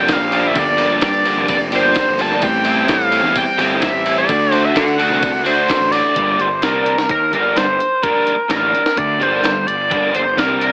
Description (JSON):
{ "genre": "indie rock", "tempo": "128 BPM", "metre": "4/4", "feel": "straight", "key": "G dorian", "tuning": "A4 = 440 Hz", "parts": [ { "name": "sync lead", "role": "melody", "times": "0.0-10.7 s", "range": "Bb4 to A5", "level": "-16 LUFS", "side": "equal", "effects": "chorus" }, { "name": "biting overdriven guitar", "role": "riff", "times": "0.0-10.7 s", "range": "D3 to F#4", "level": "-20 LUFS", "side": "equal", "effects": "ensemble chorus" }, { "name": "clean electric guitar", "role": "riff", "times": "0.0-10.7 s", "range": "G2 to G4", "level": "-23 LUFS", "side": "equal", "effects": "none" }, { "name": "fuzz picked electric bass", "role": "bass", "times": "0.0-10.7 s", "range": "F1 to D3", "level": "-22 LUFS", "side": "equal", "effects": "overdrive" }, { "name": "breakbeat sampler-style drum kit", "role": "drums", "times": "0.1-10.7 s", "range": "hi-hat, kick drum, ride cymbal, snare drum", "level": "-22 LUFS", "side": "equal", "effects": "none" }, { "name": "tambourine", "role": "percussion", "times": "0.1-10.5 s", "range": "none", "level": "-45 LUFS", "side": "equal", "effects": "none" } ], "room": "light reverb", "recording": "AM radio sound", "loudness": "-13 LUFS", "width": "side -35 dB against mid", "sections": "0.0-6.2 A section; 6.2-10.7 B section", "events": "kick and snare drop out 5.9", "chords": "0.0 Gm7; 2.4 Am7; 4.3 D; 6.2 Gm" }